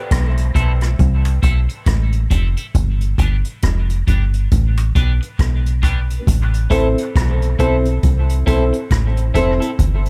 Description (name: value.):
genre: dub reggae.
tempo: 68 BPM.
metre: 4/4.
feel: swing 60% on 16ths.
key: A minor.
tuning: A4 = 439 Hz.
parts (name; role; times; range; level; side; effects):
deep dub fingered electric bass; bass; 0.1-10.1 s; F1 to C2; -18 LUFS; equal; none.
jazz brush drum kit; drums; 0.1-10.1 s; hi-hat, kick drum, rim click; -22 LUFS; equal; none.
clean electric guitar; accompaniment; 0.5-9.7 s; B3 to A4; -28 LUFS; equal; analog chorus, high-pass filter, dub echo.
dark grand piano; stabs; 0.6-9.6 s; B3 to C5; -26 LUFS; equal; high-pass filter, dub echo.
bongos; percussion; 1.3-7.0 s; none; -42 LUFS; equal; none.
room: light reverb, small room ambience.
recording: echo-heavy mix.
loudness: -17 LUFS.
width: mono.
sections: 0.0-10.1 A section.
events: part muted 6.3-10.1.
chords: 0.0 Am; 2.7 G; 6.3 Am.